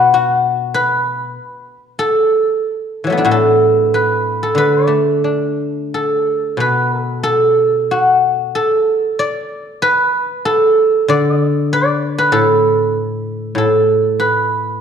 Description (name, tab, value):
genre	chinese traditional, Chinese solo plucked strings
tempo	86-99 BPM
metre	4/4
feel	rubato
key	D gong mode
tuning	A4 = 439 Hz
part	guzheng	solo	0.0-14.8 s	A2 to D5	-13 LUFS	equal	none
room	moderate recital hall reverb, RT60 1.5 s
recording	dark, warm production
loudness	-13 LUFS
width	side -7 dB against mid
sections	0.0-14.8 A section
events	none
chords	none